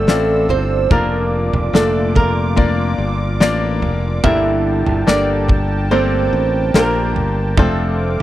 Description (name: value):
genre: pop ballad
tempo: 72 BPM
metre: 4/4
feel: straight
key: unclear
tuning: A4 = 441 Hz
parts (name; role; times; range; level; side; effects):
- flamenco guitar; melody; 0.0-8.2 s; A3 to E5; -18 LUFS; right 3 dB; slapback echo
- bright baby grand piano; accompaniment; 0.0-8.2 s; G2 to D5; -21 LUFS; left 5 dB; none
- sweeping resonant pad; sustained chords; 0.0-8.2 s; F4 to E6; -27 LUFS; right 2 dB; chorus
- modern bright fingered electric bass; bass; 0.0-8.2 s; F1 to Bb1; -19 LUFS; equal; none
- damped 70s drum kit; drums; 0.1-8.2 s; kick drum, snare drum, toms; -16 LUFS; equal; none
room: small room ambience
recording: dry, close 1970s-style studio recording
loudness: -14 LUFS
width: side -14 dB against mid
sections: 0.0-8.2 A section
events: none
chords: 0.0 Fmaj7; 0.9 Bb/F; 4.2 Gmadd9; 7.6 Dm7/F